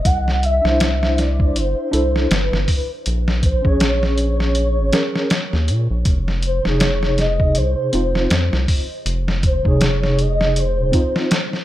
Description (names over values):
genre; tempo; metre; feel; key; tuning
trip hop; 80 BPM; 4/4; swing 58% on 16ths; unclear; A4 = 440 Hz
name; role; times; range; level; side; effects
pure breathy sine lead; melody; 0.0-11.6 s; B4 to Gb5; -23 LUFS; equal; ensemble chorus, cassette tape, tape echo
round analog bass; bass; 0.1-10.9 s; Eb1 to Bb2; -19 LUFS; equal; tube saturation
trip hop sampler-style drum kit; drums; 0.1-11.6 s; hi-hat, kick drum, snare drum; -19 LUFS; equal; small room reverb
mellow tine electric piano; accompaniment; 0.6-11.3 s; C3 to Db5; -23 LUFS; equal; tremolo, vintage 12-bit sampler grit, tape echo
room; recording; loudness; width
digital ambience; none; -16 LUFS; side -14 dB against mid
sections
0.0-11.6 A section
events
none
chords
0.1 Cadd9; 3.1 Bbm7; 6.1 Fm7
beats
| 0.06 0.81 1.56 2.31 | 3.06 3.81 4.56 5.31 | 6.06 6.81 7.56 8.31 | 9.06 9.81 10.56 11.31